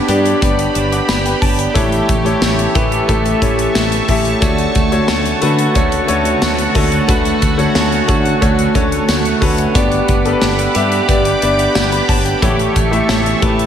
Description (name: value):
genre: 1980s-style pop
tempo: 90 BPM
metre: 4/4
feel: straight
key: D major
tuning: A4 = 439 Hz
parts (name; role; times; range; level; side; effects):
- clear grand piano; accompaniment; 0.0-13.7 s; D3 to D6; -17 LUFS; left 3 dB; none
- sweeping resonant pad; sustained chords; 0.0-13.7 s; D4 to D6; -20 LUFS; right 2 dB; chorus
- electric guitar at the edge of break-up; riff; 0.0-13.7 s; E3 to G4; -20 LUFS; right 6 dB; wide subtle chorus, tape echo
- mellow fretless electric bass; bass; 0.1-13.7 s; G1 to D3; -20 LUFS; equal; none
- modern studio drum kit; drums; 0.1-13.7 s; hi-hat, kick drum, snare drum, tambourine; -17 LUFS; equal; none
room: moderate lush hall reverb, RT60 2.4 s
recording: big arena sound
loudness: -12 LUFS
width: side -9 dB against mid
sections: 0.0-13.7 A section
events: none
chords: 0.0 G; 1.8 A7; 4.4 Dmaj7; 9.8 G; 12.4 A7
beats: 0.42 1.09 | 1.76 2.42 3.09 3.76 | 4.42 5.09 5.76 6.42 | 7.09 7.76 8.42 9.09 | 9.76 10.42 11.09 11.76 | 12.42 13.09